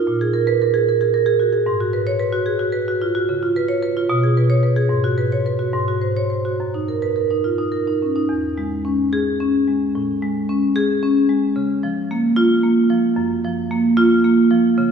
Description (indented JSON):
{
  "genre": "classical, contemporary piece for solo marimba",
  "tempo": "74 BPM (dotted quarters)",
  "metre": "6/8",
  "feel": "rubato",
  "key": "F# major",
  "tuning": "A4 = 440 Hz",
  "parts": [
    { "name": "marimba with medium hard mallets", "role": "solo", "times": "0.0-14.9 s", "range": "E2 to C#5", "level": "-16 LUFS", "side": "right 1 dB", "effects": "none" }
  ],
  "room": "wet concert hall reverb, RT60 2.3 s",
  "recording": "heard from further back in the room",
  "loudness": "-16 LUFS",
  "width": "side -6 dB against mid",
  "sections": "0.0-8.3 A section; 8.3-14.9 B section",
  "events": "none",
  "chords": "0.1 G#sus2/A#; 1.7 G#m7; 3.3 C#7; 4.1 Bsus2; 4.9 G#m7; 5.7 G#7; 6.6 F#6; 8.3 E6; 9.9 Amaj7; 11.6 C#6; 13.2 F#maj7"
}